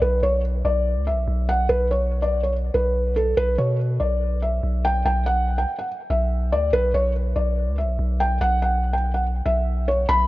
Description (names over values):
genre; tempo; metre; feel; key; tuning
hip hop, trap; 143 BPM; 4/4; half-time; B minor; A4 = 440 Hz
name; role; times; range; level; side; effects
felt-muted upright piano; melody; 0.0-10.3 s; A4 to B5; -22 LUFS; equal; low-pass filter, tape echo
long sustained 808-style bass; bass; 0.0-10.3 s; B1 to B2; -22 LUFS; equal; none
room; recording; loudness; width
light reverb, small room ambience; nothing above 7.8 kHz; -20 LUFS; side -17 dB against mid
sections
0.0-10.1 A section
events
none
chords
0.0 N.C.; 3.4 Bsus4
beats
| 0.02 0.44 0.86 1.28 | 1.70 2.12 2.54 2.96 | 3.38 3.79 4.21 4.63 | 5.05 5.47 5.89 6.31 | 6.73 7.15 7.57 7.99 | 8.41 8.83 9.25 9.67 | 10.09